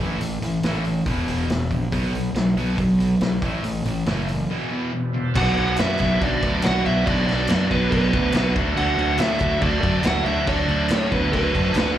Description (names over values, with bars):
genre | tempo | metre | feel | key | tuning
classic rock | 140 BPM | 4/4 | straight | B minor | A4 = 441 Hz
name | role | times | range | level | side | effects
distorted electric guitar | riff | 0.0-12.0 s | E2 to F#4 | -27 LUFS | left 5 dB | distortion
sludgy distorted guitar | riff | 0.0-12.0 s | E2 to F#4 | -27 LUFS | right 8 dB | overdrive, slapback echo
fuzz fingered electric bass | bass | 0.0-12.0 s | E1 to A2 | -24 LUFS | equal | overdrive
vintage drum kit | drums | 0.2-11.9 s | crash cymbal, hi-hat, kick drum, snare drum | -25 LUFS | equal | none
overdriven tonewheel organ | sustained chords | 5.0-12.0 s | A3 to E#5 | -34 LUFS | equal | none
biting lead guitar | melody | 5.4-11.9 s | B4 to F#5 | -25 LUFS | right 1 dB | overdrive, slapback echo
dark smooth lead guitar | second line | 5.4-11.9 s | B3 to B4 | -31 LUFS | right 3 dB | none
group handclap | percussion | 5.8-11.9 s | none | -36 LUFS | equal | none
room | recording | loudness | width
light reverb | live gig heard through the venue's PA, club reverb | -19 LUFS | side -11 dB against mid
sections
0.0-5.4 A section; 5.4-12.0 B section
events
none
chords
0.0 A5; 1.1 E5; 1.9 B5; 3.4 A5; 4.5 E5; 5.4 Bm; 8.6 D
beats
| 0.21 0.64 1.07 1.50 | 1.92 2.35 2.78 3.21 | 3.64 4.07 4.50 4.93 | 5.35 5.78 6.21 6.64 | 7.06 7.49 7.92 8.35 | 8.77 9.20 9.63 10.06 | 10.48 10.91 11.34 11.77